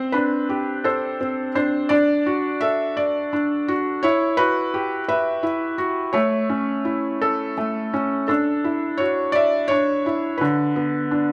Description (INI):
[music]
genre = children's music, lullaby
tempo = 56 BPM (dotted quarters)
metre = 6/8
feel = straight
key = D major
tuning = A4 = 440 Hz
[part]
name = felt-muted upright piano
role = solo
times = 0.0-11.3 s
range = D3 to E5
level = -22 LUFS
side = equal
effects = none
[sound]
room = moderate recital hall reverb, RT60 1.5 s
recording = none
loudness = -22 LUFS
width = mono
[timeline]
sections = 0.0-8.3 A section; 8.3-11.3 B section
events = none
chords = 0.0 Csus2; 1.9 D; 4.0 Emadd9; 6.1 A; 8.3 Dadd9; 10.4 Bm/D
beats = 0.85 | 1.91 2.97 | 4.03 5.08 | 6.14 7.21 | 8.29 9.35 | 10.41